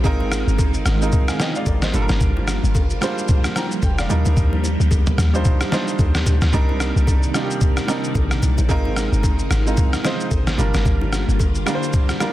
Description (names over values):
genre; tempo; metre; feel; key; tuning
amapiano; 111 BPM; 4/4; swing 58% on 16ths; unclear; A4 = 442 Hz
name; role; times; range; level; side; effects
clear baby grand piano; accompaniment; 0.0-12.3 s; G3 to Bb5; -24 LUFS; right 3 dB; none
phased string machine; sustained chords; 0.0-12.3 s; C3 to D5; -28 LUFS; left 1 dB; ensemble chorus, phaser, sidechain pumping
deep log drum bass; bass; 0.0-11.6 s; F1 to Eb2; -19 LUFS; equal; none
trip hop sampler-style drum kit; drums; 0.0-12.3 s; kick drum, rim click, shaker, snare drum, toms; -20 LUFS; equal; soft clipping on snare
congas and bongos; percussion; 0.0-12.3 s; none; -32 LUFS; left 4 dB; none
room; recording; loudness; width
digital ambience; dense, heavily limited modern master; -16 LUFS; side -14 dB against mid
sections
0.0-12.3 A section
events
none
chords
0.0 Ab6; 1.9 Gm7; 4.1 Ebmaj7; 6.5 Cm9; 8.7 Ab6; 10.6 Gm7